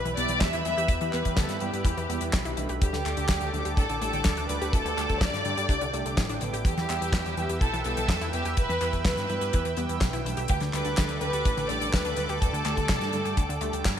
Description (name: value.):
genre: italo disco.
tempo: 125 BPM.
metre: 4/4.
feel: straight.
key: E minor.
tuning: A4 = 440 Hz.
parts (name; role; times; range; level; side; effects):
dark studio violin section; melody; 0.0-13.9 s; G4 to E5; -31 LUFS; equal; ping-pong delay.
warm analog pad; sustained chords; 0.0-14.0 s; G4 to E6; -35 LUFS; right 1 dB; chorus.
fat analog bass; bass; 0.0-14.0 s; D1 to G2; -33 LUFS; equal; none.
wide unison pluck; arpeggios; 0.1-14.0 s; D3 to G4; -37 LUFS; left 3 dB; ping-pong delay.
damped 70s drum kit; drums; 0.1-14.0 s; handclaps, hi-hat, snare drum; -32 LUFS; left 2 dB; gated reverb.
mellow synth brass; stabs; 0.2-13.9 s; D3 to B4; -36 LUFS; right 2 dB; chorus.
kick drum; drums; 0.4-13.9 s; none; -25 LUFS; equal; none.
room: light reverb.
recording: bright 1980s-style digital production.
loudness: -24 LUFS.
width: side -9 dB against mid.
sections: 0.0-14.0 A section.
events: none.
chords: 0.0 Em; 2.8 Dsus4; 6.7 Em; 10.5 Dsus4.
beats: 0.41 | 0.89 1.37 1.85 2.33 | 2.81 3.29 3.77 4.25 | 4.73 5.21 5.69 6.17 | 6.65 7.13 7.61 8.09 | 8.57 9.05 9.53 10.01 | 10.49 10.97 11.45 11.93 | 12.41 12.89 13.37 13.85.